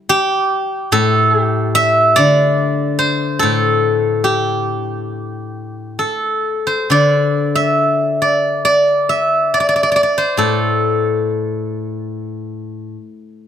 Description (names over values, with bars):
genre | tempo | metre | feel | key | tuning
chinese traditional, Chinese solo plucked strings | 70 BPM | 4/4 | uneven beats, rubato | D shang mode | A4 = 436 Hz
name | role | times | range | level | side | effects
steel-string zither | solo | 0.0-12.9 s | A2 to E5 | -14 LUFS | equal | none
room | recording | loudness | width
light reverb | close, detailed microphones | -13 LUFS | side -9 dB against mid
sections
0.0-13.5 A section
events
none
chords
none